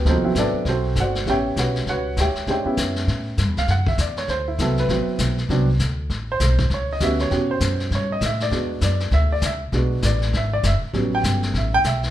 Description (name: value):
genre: jazz piano trio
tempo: 198 BPM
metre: 4/4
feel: swing 62% on 8ths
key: A mixolydian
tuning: A4 = 442 Hz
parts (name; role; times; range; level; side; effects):
- dark baby grand piano; melody; 0.0-12.1 s; B2 to G5; -22 LUFS; right 1 dB; none
- upright bass; bass; 0.0-12.1 s; F#1 to A2; -22 LUFS; equal; none
- vintage brush drum kit; drums; 0.1-12.1 s; brushed snare drum, hi-hat, kick drum, snare drum; -28 LUFS; left 3 dB; none
room: moderate large studio reverb, RT60 0.9 s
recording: minimal, uncompressed stereo recording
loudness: -19 LUFS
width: side -12 dB against mid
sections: 0.0-12.1 A section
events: grand piano solo 0.0-12.1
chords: 0.1 D13; 1.3 A13; 3.7 D13; 6.1 A13; 8.5 E13; 10.9 A13